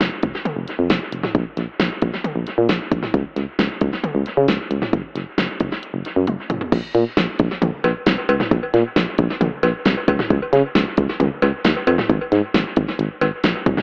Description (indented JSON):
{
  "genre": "synth-pop",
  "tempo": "134 BPM",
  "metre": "4/4",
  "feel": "straight",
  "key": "Bb minor",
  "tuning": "A4 = 438 Hz",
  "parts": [
    { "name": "solid FM bass", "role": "bass", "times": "0.0-13.8 s", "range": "F1 to Db3", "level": "-18 LUFS", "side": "equal", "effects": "none" },
    { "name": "pop drum kit", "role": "drums", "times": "0.0-13.8 s", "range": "cowbell, crash cymbal, hi-hat, kick drum, snare drum, toms", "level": "-20 LUFS", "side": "equal", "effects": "dub echo" }
  ],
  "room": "moderate spring reverb, RT60 2.1 s",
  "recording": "echo-heavy mix, AM radio sound",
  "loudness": "-17 LUFS",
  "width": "side -31 dB against mid",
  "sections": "0.0-6.7 A section; 6.7-13.8 B section",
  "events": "drum fill 6.3-6.7",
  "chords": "none"
}